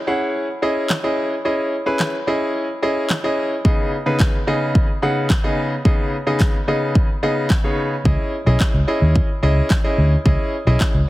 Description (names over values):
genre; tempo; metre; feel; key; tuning
dance-pop; 109 BPM; 4/4; straight; C# minor; A4 = 440 Hz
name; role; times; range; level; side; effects
bright concert grand piano; accompaniment; 0.1-11.0 s; C#3 to F#5; -20 LUFS; equal; sidechain pumping
pop drum kit; drums; 0.9-10.9 s; handclaps, kick drum, snare drum; -18 LUFS; equal; none
vintage muted fingered electric bass; bass; 8.1-11.0 s; B1 to D#2; -15 LUFS; equal; sidechain pumping
room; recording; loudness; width
moderate plate reverb, RT60 2.1 s; heavily compressed radio sound, multiband compression; -16 LUFS; side -17 dB against mid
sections
0.0-11.1 A section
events
none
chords
0.0 C#madd9; 3.6 G#m/C#; 8.1 C#madd9